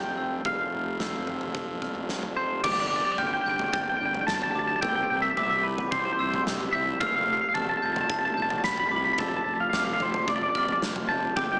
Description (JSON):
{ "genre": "post-rock", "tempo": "110 BPM", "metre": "4/4", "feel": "straight", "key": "F major", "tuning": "A4 = 441 Hz", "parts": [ { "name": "twangy electric guitar", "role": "melody", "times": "0.0-11.6 s", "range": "B4 to B5", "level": "-29 LUFS", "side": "equal", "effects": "lush chorus, slapback echo" }, { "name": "dark analog pad", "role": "sustained chords", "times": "0.0-11.6 s", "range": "D3 to G4", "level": "-43 LUFS", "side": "equal", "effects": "none" }, { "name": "glockenspiel with soft plastic mallets", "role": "arpeggios", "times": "0.0-11.6 s", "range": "D6 to A6", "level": "-38 LUFS", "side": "equal", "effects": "slapback echo" }, { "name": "mellow electric guitar", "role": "arpeggios", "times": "0.0-11.6 s", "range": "C3 to C5", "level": "-42 LUFS", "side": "equal", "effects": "none" }, { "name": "fuzz fingered electric bass", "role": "bass", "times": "0.0-11.6 s", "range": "F1 to D2", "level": "-38 LUFS", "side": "equal", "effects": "overdrive" }, { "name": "huge arena drum kit", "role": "drums", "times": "0.0-11.5 s", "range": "crash cymbal, kick drum, snare drum, toms", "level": "-35 LUFS", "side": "equal", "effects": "none" } ], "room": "light reverb, studio reverb", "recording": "small speaker sound", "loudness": "-27 LUFS", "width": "mono", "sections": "0.0-2.6 A section; 2.6-11.6 B section", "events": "none", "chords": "0.0 Fadd9; 2.6 Gsus4; 4.8 C; 7.0 Fadd9" }